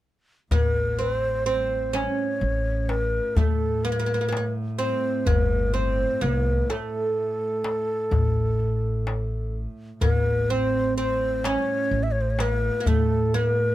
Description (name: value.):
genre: Arabic maqam ensemble.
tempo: 126 BPM (eighths).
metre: 10/8.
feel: straight.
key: A maqam saba.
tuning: A4 = 440 Hz.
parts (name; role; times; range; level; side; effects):
breathy mellow ney; melody; 0.5-13.7 s; A4 to E5; -26 LUFS; left 1 dB; none.
oud; second line; 0.5-13.7 s; A3 to C#4; -29 LUFS; right 5 dB; none.
upright bass; bass; 0.5-13.7 s; G1 to A2; -26 LUFS; equal; none.
rich double bass; drone; 0.5-13.7 s; A2; -35 LUFS; right 2 dB; none.
darbuka; percussion; 0.5-13.5 s; none; -25 LUFS; left 2 dB; none.
room: little or no reverb.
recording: close, detailed microphones.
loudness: -22 LUFS.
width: side -14 dB against mid.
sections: 0.5-13.7 A section.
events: none.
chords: none.